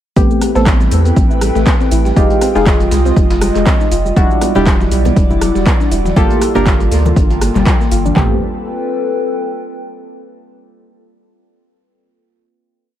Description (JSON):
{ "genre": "deep house", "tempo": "120 BPM", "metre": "4/4", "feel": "swing 56% on 16ths", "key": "A minor", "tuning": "A4 = 440 Hz", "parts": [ { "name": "airy breathy pad", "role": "sustained chords", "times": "0.2-8.4 s", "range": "G3 to Eb5", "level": "-23 LUFS", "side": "right 2 dB", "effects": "chorus, phaser, vintage 12-bit sampler grit, sidechain pumping" }, { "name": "soft round pluck", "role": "arpeggios", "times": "0.2-8.4 s", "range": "F#3 to F4", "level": "-21 LUFS", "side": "left 3 dB", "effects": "chorus, sidechain pumping, tape echo" }, { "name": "deep mellow chord stab", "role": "stabs", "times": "0.2-8.4 s", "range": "G3 to Bb4", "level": "-17 LUFS", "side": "equal", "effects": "chorus, sidechain pumping, tape echo" }, { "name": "round analog bass", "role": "bass", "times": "0.2-8.4 s", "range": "E1 to E2", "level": "-16 LUFS", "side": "equal", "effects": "sidechain pumping" }, { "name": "deep house drum kit", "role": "drums", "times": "0.2-8.3 s", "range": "handclaps, kick drum, toms", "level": "-13 LUFS", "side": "equal", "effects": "overdrive" }, { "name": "deep house drum kit", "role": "drums", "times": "0.2-8.1 s", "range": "handclaps, hi-hat, rim click, shaker", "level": "-22 LUFS", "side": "right 1 dB", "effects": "overdrive" }, { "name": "dusty soul sampler-style drum kit", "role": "drums", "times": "0.2-8.0 s", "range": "hi-hat, snare drum", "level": "-32 LUFS", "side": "left 1 dB", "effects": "overdrive, high-pass filter on hats, high-pass filter on snare, high-pass filter on room" }, { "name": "warbly tape-like pad", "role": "texture", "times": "0.2-10.1 s", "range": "G3 to G5", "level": "-20 LUFS", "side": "equal", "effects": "chorus, built-in reverb, sidechain pumping" }, { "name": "congas", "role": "percussion", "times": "4.2-8.1 s", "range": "none", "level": "-22 LUFS", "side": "left 2 dB", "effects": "none" } ], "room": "little or no reverb", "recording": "none", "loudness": "-10 LUFS", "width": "side -11 dB against mid", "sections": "0.2-8.2 drop; 8.2-10.2 final chord", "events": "drop 0.2-8.2", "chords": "0.2 Am9; 2.2 Fm9; 4.2 Em9; 6.2 Gm9; 8.2 Am9", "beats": "| 0.17 0.67 1.17 1.67 | 2.17 2.67 3.17 3.67 | 4.17 4.67 5.17 5.67 | 6.17 6.67 7.17 7.67 | 8.16 8.66 9.16 9.66" }